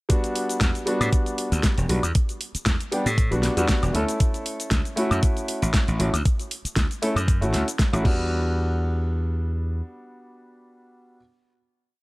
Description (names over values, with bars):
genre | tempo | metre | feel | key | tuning
nu-disco, nu disco | 117 BPM | 4/4 | swing 54% on 16ths | E dorian | A4 = 437 Hz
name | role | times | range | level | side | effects
warm grand piano | accompaniment | 0.1-11.2 s | G3 to A4 | -27 LUFS | equal | sidechain pumping, analog delay
electronic kick drum | drums | 0.1-8.2 s | none | -22 LUFS | equal | none
pop drum kit | drums | 0.1-8.2 s | cabasa, crash cymbal, hi-hat, snare drum, woodblock | -29 LUFS | equal | none
slap bass | bass | 0.6-9.8 s | E1 to A2 | -24 LUFS | equal | none
room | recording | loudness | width
little or no reverb | none | -21 LUFS | side -22 dB against mid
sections
0.1-8.3 drop; 8.3-12.0 final hit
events
drop 0.1-8.3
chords
0.1 Em7; 3.9 Dmaj7 (rootless); 8.0 Em7